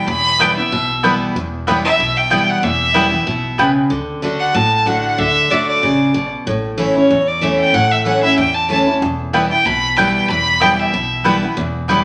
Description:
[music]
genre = bluegrass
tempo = 188 BPM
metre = 4/4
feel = swing 54% on 8ths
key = E dorian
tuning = A4 = 440 Hz
[part]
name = clear fiddle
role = melody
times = 0.0-11.4 s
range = C#5 to B5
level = -18 LUFS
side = equal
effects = none
[part]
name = picked steel-string acoustic guitar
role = accompaniment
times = 0.0-12.0 s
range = E2 to F#4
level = -20 LUFS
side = equal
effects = none
[part]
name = upright bass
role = bass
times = 0.1-12.0 s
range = E1 to E2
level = -30 LUFS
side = equal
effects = none
[part]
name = mandolin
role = stabs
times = 0.4-3.7, 9.3-12.0 s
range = B3 to G5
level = -20 LUFS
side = equal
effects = none
[sound]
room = wet large studio reverb, RT60 1.1 s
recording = none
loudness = -15 LUFS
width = mono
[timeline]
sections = 0.0-3.9 A section; 3.9-12.0 A section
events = none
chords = 0.0 Em; 3.9 D; 6.5 A; 9.0 Em

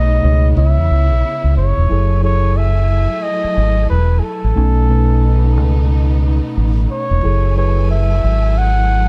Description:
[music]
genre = R&B, neo-soul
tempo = 90 BPM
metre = 4/4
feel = swing 60% on 16ths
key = F# dorian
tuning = A4 = 438 Hz
[part]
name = breathy flugelhorn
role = melody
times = 0.0-9.1 s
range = G#4 to F#5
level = -23 LUFS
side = equal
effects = none
[part]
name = mellow tine electric piano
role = accompaniment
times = 0.0-9.1 s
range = B2 to G#5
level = -24 LUFS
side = equal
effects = phaser
[part]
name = warm studio string section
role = sustained chords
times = 0.0-9.1 s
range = C#3 to G#5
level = -31 LUFS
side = equal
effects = none
[part]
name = deep dub fingered electric bass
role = bass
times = 0.0-9.1 s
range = E1 to E2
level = -16 LUFS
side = equal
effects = none
[sound]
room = small room ambience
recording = none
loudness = -15 LUFS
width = mono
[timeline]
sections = 0.0-1.9 A section; 1.9-9.1 B section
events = none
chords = 0.0 B13; 0.6 C#m7; 1.9 F#m9; 4.6 B13; 7.2 F#m9

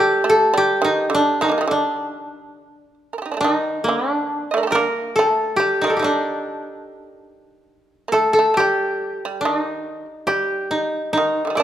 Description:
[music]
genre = japanese traditional, Japanese chamber music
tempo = 70 BPM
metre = 2/4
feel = rubato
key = D miyako bushi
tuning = A4 = 438 Hz
[part]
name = koto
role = melody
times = 0.0-11.6 s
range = D4 to D5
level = -18 LUFS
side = equal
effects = none
[part]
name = shamisen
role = second line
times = 0.0-11.6 s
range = D3 to Eb5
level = -24 LUFS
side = right 4 dB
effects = none
[sound]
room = moderate recital hall reverb, RT60 1.6 s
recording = none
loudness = -17 LUFS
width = side -11 dB against mid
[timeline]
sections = 0.0-3.4 A section; 3.4-11.6 B section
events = none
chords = none

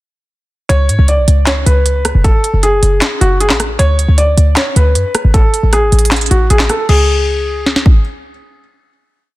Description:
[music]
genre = hip hop, trap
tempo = 155 BPM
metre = 4/4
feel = half-time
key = unclear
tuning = A4 = 440 Hz
[part]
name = felt-muted upright piano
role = melody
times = 0.7-8.0 s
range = F#4 to D5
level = -16 LUFS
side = equal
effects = ping-pong delay
[part]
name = short 808-style bass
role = bass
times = 0.7-8.4 s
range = F#1 to G#2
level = -11 LUFS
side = equal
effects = none
[part]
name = trap drum kit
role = drums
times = 0.7-7.9 s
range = crash cymbal, handclaps, hi-hat, kick drum, rim click, snare drum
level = -14 LUFS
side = equal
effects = soft clipping on snare
[sound]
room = digital ambience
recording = dense, heavily limited modern master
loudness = -9 LUFS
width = side -18 dB against mid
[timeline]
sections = 0.7-6.9 hook; 6.9-9.4 final chord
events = none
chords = 0.7 C#5; 2.2 F#m; 3.8 Dmaj7(no3); 5.3 F#madd9/G# (rootless); 6.9 C#5

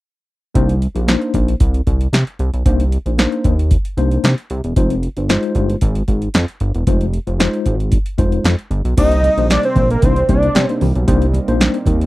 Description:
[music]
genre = early-eighties boogie funk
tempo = 114 BPM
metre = 4/4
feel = straight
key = C minor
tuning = A4 = 440 Hz
[part]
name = mellow tine electric piano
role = accompaniment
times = 0.5-11.8 s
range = Ab3 to C5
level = -20 LUFS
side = left 3 dB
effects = fast stereo tremolo
[part]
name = chorused synth bass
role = bass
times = 0.6-12.1 s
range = E1 to C3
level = -17 LUFS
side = equal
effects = none
[part]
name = electro analog drum machine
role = drums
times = 0.6-12.1 s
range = crash cymbal, hi-hat, kick drum, snare drum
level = -17 LUFS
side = equal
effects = none
[part]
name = fat analog lead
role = melody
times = 9.0-10.8 s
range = Bb4 to Eb5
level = -16 LUFS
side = equal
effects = slapback echo
[part]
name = chorused pulse-width pad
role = sustained chords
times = 9.0-12.1 s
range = C3 to Eb4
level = -27 LUFS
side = right 2 dB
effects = none
[part]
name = congas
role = percussion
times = 9.0-12.0 s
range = none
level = -24 LUFS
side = right 4 dB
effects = none
[sound]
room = little or no reverb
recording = dry, close 1970s-style studio recording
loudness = -14 LUFS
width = side -18 dB against mid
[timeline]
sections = 0.6-9.0 A section; 9.0-12.1 B section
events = none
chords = 0.6 Cm9; 4.8 Fm7; 9.0 Cm9

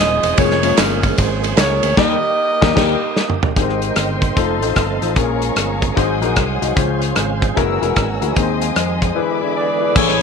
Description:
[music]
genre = uptempo gospel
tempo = 150 BPM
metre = 4/4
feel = swing 63% on 8ths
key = Ab major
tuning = A4 = 440 Hz
[part]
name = clear saxophone section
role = melody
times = 0.0-3.4, 9.6-10.2 s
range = Db4 to Eb5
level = -18 LUFS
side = right 1 dB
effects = none
[part]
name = tonewheel organ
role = sustained chords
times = 0.0-10.2 s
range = D3 to C5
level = -24 LUFS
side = right 12 dB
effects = slow rotary speaker, overdrive, chorus vibrato
[part]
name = fingered electric bass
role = bass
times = 0.0-10.2 s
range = Eb1 to F2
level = -22 LUFS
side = right 1 dB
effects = none
[part]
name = handclaps and tambourine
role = percussion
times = 0.0-1.9, 10.0-10.1 s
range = none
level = -26 LUFS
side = right 5 dB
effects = none
[part]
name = natural country drum kit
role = drums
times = 0.2-10.1 s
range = crash cymbal, hi-hat, kick drum, ride cymbal, rim click, snare drum, toms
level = -18 LUFS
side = equal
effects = none
[part]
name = warm grand piano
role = accompaniment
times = 0.4-10.2 s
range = Ab2 to Ab5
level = -20 LUFS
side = left 12 dB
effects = none
[part]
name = dark studio string section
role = sustained chords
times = 3.6-10.0 s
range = Eb5 to Fb6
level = -26 LUFS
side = left 2 dB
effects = none
[sound]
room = moderate spring reverb, RT60 1.7 s, small room ambience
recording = 1960s-style stereo with parts hard left and right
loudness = -14 LUFS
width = side -6 dB against mid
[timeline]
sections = 0.0-3.6 A section; 3.6-10.0 B section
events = band accent 2.0-3.6; drum fill 3.2-3.6; grand piano fill 6.2-6.8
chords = 0.4 Bbm7/F; 2.0 Eb; 3.6 Abmaj7; 4.4 F7; 5.2 Bbm7; 6.0 Ab7; 6.8 Dbmaj7; 7.6 Gb9; 8.4 Ab/Eb; 9.2 E7

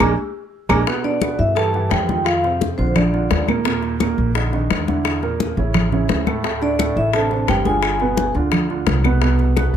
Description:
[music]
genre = Afro-Cuban jazz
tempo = 173 BPM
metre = 4/4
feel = straight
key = unclear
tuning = A4 = 440 Hz
[part]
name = felt-muted upright piano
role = second line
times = 0.0-3.4, 6.6-8.3 s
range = C4 to D6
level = -24 LUFS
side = right 4 dB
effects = none
[part]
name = warm upright piano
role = accompaniment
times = 0.0-9.8 s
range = A2 to C5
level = -22 LUFS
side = right 5 dB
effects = none
[part]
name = upright bass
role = bass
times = 0.0-9.8 s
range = G1 to G2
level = -21 LUFS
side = equal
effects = none
[part]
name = claves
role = percussion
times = 0.0-9.7 s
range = none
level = -27 LUFS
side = left 8 dB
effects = none
[part]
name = congas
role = percussion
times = 0.0-9.8 s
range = none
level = -22 LUFS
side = left 3 dB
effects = none
[part]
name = cowbell and bongos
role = percussion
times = 0.0-9.7 s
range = none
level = -25 LUFS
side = left 7 dB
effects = none
[part]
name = vibraphone with medium mallets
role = melody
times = 1.0-3.4, 6.6-8.3 s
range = C5 to A5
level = -22 LUFS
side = left 2 dB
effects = none
[sound]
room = light reverb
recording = close, detailed microphones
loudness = -16 LUFS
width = side -9 dB against mid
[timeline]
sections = 0.9-9.8 A section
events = band accent 0.0-0.9; drum fill 0.4-0.9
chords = 0.0 Bb7; 0.9 G13; 2.3 F5; 3.0 Bb; 3.7 Eb5; 5.1 Bbmaj7#11; 5.7 A; 6.4 D7(no3); 7.8 G7b9; 9.2 Cmaj7(no3)

